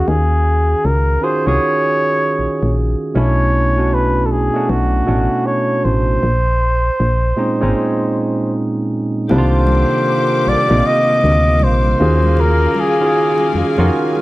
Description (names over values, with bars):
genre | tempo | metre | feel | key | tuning
R&B, neo-soul | 78 BPM | 4/4 | swing 62% on 16ths | C phrygian | A4 = 440 Hz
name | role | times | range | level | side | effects
breathy flugelhorn | melody | 0.0-13.5 s | F#4 to Eb5 | -17 LUFS | equal | none
barky tine electric piano | accompaniment | 0.0-14.2 s | Bb2 to F5 | -18 LUFS | right 2 dB | overdrive
solid FM bass | bass | 0.0-13.9 s | Ab1 to F2 | -15 LUFS | equal | none
dark studio string section | sustained chords | 9.3-14.2 s | Ab4 to D6 | -26 LUFS | left 1 dB | none
mellow saxophone section | stabs | 9.3-14.2 s | Db3 to G4 | -23 LUFS | left 6 dB | none
congas | percussion | 9.3-14.2 s | none | -27 LUFS | left 2 dB | none
room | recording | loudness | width
moderate studio reverb, RT60 0.6 s | none | -13 LUFS | side -18 dB against mid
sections
0.0-9.3 A section; 9.3-14.2 B section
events
break 7.8-9.3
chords
0.0 Ebm11; 3.1 Bm11; 6.2 Bbm11; 9.3 Cm11; 12.0 Ebm11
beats
| 0.06 0.83 1.60 2.37 | 3.13 3.90 4.67 5.44 | 6.21 6.98 7.75 8.52 | 9.29 10.06 10.83 11.60 | 12.37 13.13 13.90